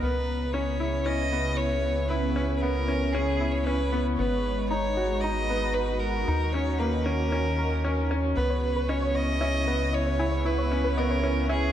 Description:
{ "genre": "electronica", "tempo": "115 BPM", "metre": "4/4", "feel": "straight", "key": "C# dorian", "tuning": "A4 = 440 Hz", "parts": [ { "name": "clear violin", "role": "melody", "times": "0.0-11.7 s", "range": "G#4 to D#5", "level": "-31 LUFS", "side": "right 1 dB", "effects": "ping-pong delay" }, { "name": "lush unison pad", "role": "sustained chords", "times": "0.0-11.7 s", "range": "C#3 to A#5", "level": "-32 LUFS", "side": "right 1 dB", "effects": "chorus" }, { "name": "bright upright piano", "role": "riff", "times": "0.0-11.7 s", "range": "A#3 to A#4", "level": "-29 LUFS", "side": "left 1 dB", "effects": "none" }, { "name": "round analog bass", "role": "bass", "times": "0.0-11.7 s", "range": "G#1 to D#2", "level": "-29 LUFS", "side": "equal", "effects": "none" }, { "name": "soft round pluck", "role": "arpeggios", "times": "8.5-11.6 s", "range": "B4 to G#5", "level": "-34 LUFS", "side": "left 1 dB", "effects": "chorus, ping-pong delay" } ], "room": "moderate echo chamber reverb, RT60 1.8 s", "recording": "dark, warm production", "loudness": "-24 LUFS", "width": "side -10 dB against mid", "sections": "0.0-11.7 A section", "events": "none", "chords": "0.0 C#m7; 4.2 G#m7; 6.3 D#m7; 8.4 C#m7" }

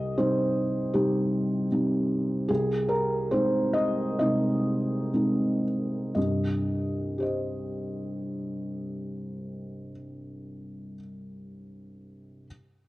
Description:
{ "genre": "neoclassical minimalist piano", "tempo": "58-78 BPM", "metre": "4/4", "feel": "rubato", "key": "C minor", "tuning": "A4 = 440 Hz", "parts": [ { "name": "felt-muted upright piano", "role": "solo", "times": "0.0-12.5 s", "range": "C2 to Eb5", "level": "-26 LUFS", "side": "equal", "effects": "cassette tape" } ], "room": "moderate spring reverb, RT60 1.6 s, small room ambience", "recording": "home recording on cassette", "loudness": "-25 LUFS", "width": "side -18 dB against mid", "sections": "0.0-6.2 A section; 6.2-10.2 B section", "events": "slowing down 0.0-6.2", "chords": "0.0 Cm; 2.5 Ab/C; 6.2 Cm" }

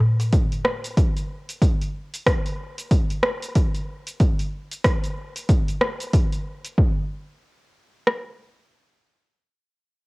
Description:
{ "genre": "downtempo", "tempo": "93 BPM", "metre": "4/4", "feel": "swing 60% on 16ths", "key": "none", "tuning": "none", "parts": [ { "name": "darbuka", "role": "percussion", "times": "0.0-0.8 s", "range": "none", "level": "-21 LUFS", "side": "equal", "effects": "none" }, { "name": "deep house drum kit", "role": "drums", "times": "0.2-6.8 s", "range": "hi-hat, rim click, shaker", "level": "-25 LUFS", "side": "equal", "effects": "overdrive, studio reverb, cassette tape" }, { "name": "deep house drum kit", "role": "drums", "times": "0.3-8.2 s", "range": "kick drum, rim click", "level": "-19 LUFS", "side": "equal", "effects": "overdrive, studio reverb, cassette tape" } ], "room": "little or no reverb", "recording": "home recording on cassette", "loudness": "-20 LUFS", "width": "side -26 dB against mid", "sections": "0.0-6.8 A section; 6.8-9.4 B section", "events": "none", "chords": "none" }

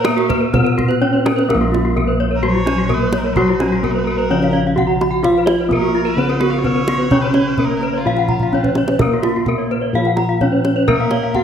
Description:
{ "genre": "Balinese gamelan", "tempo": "128 BPM", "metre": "4/4", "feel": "straight", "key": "Bb pelog", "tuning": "A4 = 440 Hz", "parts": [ { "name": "gamelan-type bronze metallophone", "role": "melody", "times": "0.0-11.4 s", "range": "Gb3 to Gb4", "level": "-20 LUFS", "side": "right 1 dB", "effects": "none" }, { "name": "clear erhu", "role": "second line", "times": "0.0-11.4 s", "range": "F4 to F5-20c", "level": "-26 LUFS", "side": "right 1 dB", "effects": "none" }, { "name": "gamelan-type bronze metallophone", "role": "accompaniment", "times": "0.0-11.4 s", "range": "Db3 to Cb4+35c", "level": "-25 LUFS", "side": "left 2 dB", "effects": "none" }, { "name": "gamelan-type bronze metallophone", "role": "arpeggios", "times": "0.0-11.4 s", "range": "F4 to Cb6+35c", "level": "-21 LUFS", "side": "left 6 dB", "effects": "none" }, { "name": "gamelan-type bronze metallophone", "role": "arpeggios", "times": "0.0-11.2 s", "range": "Db4 to Bb5", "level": "-24 LUFS", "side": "right 5 dB", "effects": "none" }, { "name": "gamelan-type bossed gongs", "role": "bass", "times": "0.0-11.4 s", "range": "Bb1 to Bb4", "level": "-20 LUFS", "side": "equal", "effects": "none" }, { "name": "kendang", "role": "percussion", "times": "0.0-11.4 s", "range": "none", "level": "-22 LUFS", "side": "right 1 dB", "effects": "none" } ], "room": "moderate concert hall reverb, RT60 1.9 s", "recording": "faint mains hum", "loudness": "-14 LUFS", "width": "side -8 dB against mid", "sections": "0.0-1.5 A section; 1.5-11.4 B section", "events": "drum fill 8.4-9.0", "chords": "none" }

